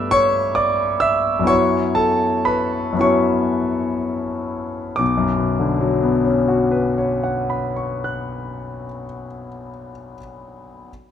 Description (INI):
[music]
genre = classical, impressionist solo piano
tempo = 28-48 BPM (dotted quarters)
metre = 6/8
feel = rubato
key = B minor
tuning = A4 = 439 Hz
[part]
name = clear concert grand piano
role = solo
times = 0.0-10.9 s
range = B1 to F#6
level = -18 LUFS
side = left 1 dB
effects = none
[sound]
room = light reverb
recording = close, detailed microphones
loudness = -17 LUFS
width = side -9 dB against mid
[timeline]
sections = 0.0-5.0 A section; 5.0-8.7 B section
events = slowing down 0.0-5.0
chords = 0.0 G69; 1.5 F#7sus4; 5.0 Bmadd9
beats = 0.16 | 1.49 3.03 | 4.99 6.87